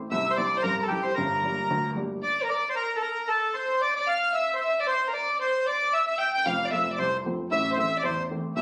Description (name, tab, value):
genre	celtic folk, Celtic reel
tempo	227 BPM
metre	4/4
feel	swing 54% on 8ths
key	unclear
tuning	A4 = 439 Hz
part	dark upright piano	accompaniment	0.0-2.2, 6.5-8.6 s	F1 to E4	-33 LUFS	equal	none
part	accordion	melody	0.1-8.6 s	G4 to G5	-28 LUFS	equal	none
part	dark fiddle	second line	0.1-8.6 s	G4 to G5	-32 LUFS	equal	none
room	moderate studio reverb, RT60 0.6 s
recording	recorded on a phone in the room, club reverb, compression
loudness	-26 LUFS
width	mono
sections	0.0-2.2 A section; 2.2-8.6 A section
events	none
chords	0.1 C; 1.2 Gm; 2.2 N.C.; 6.5 F; 7.5 Am